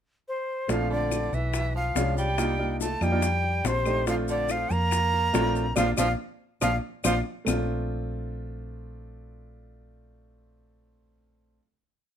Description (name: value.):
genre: Afro-Cuban jazz.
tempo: 141 BPM.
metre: 4/4.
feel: straight.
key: Bb major.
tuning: A4 = 440 Hz.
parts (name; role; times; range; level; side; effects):
breathy bright jazz flute; melody; 0.3-7.2 s; C5 to Bb5; -28 LUFS; equal; none.
warm baritone saxophone; second line; 0.7-7.2 s; C3 to Bb3; -34 LUFS; right 5 dB; none.
warm baby grand piano; accompaniment; 0.7-11.6 s; G#3 to G4; -30 LUFS; right 2 dB; none.
hollow-body short-scale fingered electric bass; bass; 0.7-11.6 s; Bb1 to F2; -29 LUFS; equal; none.
bongos; percussion; 0.7-7.6 s; none; -33 LUFS; left 7 dB; none.
maracas; percussion; 0.7-7.6 s; none; -36 LUFS; left 6 dB; none.
claves; percussion; 1.1-7.6 s; none; -37 LUFS; left 8 dB; none.
room: light reverb.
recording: minimal, uncompressed stereo recording.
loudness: -24 LUFS.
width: side -9 dB against mid.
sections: 0.0-0.7 pickup bar; 0.7-7.5 A section; 7.5-10.9 final chord.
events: band accent 5.8-7.5; drum fill 7.0-7.5.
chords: 0.0 N.C.; 0.7 Bbmaj9; 1.5 Bdim7; 2.4 Cm11; 3.2 F13; 4.1 Bbmaj9.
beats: 0.27 | 0.69 1.11 1.53 1.96 | 2.38 2.80 3.22 3.65 | 4.07 4.49 4.92 5.34 | 5.77 6.19 6.62 7.05 | 7.47 7.90 8.33 8.76 | 9.19 9.62 10.04 10.47.